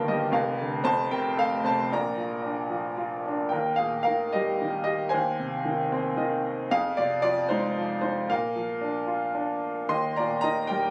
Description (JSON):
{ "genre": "classical, lyrical solo piano", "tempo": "113 BPM", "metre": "3/4", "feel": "rubato", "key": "Bb major, Eb major from 3.5 s", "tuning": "A4 = 438 Hz", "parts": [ { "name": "bright upright piano", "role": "solo", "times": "0.0-10.9 s", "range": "F1 to C6", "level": "-27 LUFS", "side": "equal", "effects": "none" } ], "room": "light reverb", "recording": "recorded on a phone in the room, club ambience", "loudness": "-27 LUFS", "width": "mono", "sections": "0.0-3.5 A section; 3.5-10.9 B section", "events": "upright piano fill 5.9-6.7", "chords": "0.3 Bb/F; 0.8 F; 1.9 Bb; 3.5 Eb; 5.1 Ab/Eb; 6.7 Fm; 8.3 Bb; 9.9 Eb" }